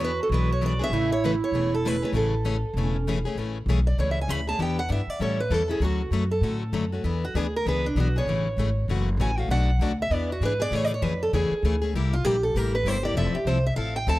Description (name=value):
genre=acoustic string swing (jazz manouche)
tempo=196 BPM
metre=4/4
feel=swing 60% on 8ths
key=A major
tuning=A4 = 440 Hz
part: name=picked acoustic archtop guitar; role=melody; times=0.0-14.2 s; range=D4 to B5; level=-28 LUFS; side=right 2 dB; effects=none
part: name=mellow clarinet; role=second line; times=0.0-3.2 s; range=C#4 to F#4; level=-29 LUFS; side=right 5 dB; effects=none
part: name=picked plugged-in steel-string acoustic guitar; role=accompaniment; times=0.0-14.2 s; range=B2 to A4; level=-29 LUFS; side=left 4 dB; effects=none
part: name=upright bass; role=bass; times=0.0-14.2 s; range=E1 to A2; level=-26 LUFS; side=equal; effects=none
room=studio reverb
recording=dry, close 1970s-style studio recording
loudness=-22 LUFS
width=side -17 dB against mid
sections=0.0-3.4 A section; 3.4-13.2 B section; 13.2-14.2 B section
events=steel-string acoustic guitar solo 3.4-14.2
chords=0.0 E7; 0.9 Amaj7; 3.4 Amaj9; 4.6 Em7; 5.2 A7; 5.8 Dmaj7; 7.0 E7; 8.3 Amaj7; 8.9 F#m7; 9.5 Bm7; 10.1 E7; 10.7 Amaj7; 11.9 C7; 13.2 Fmaj7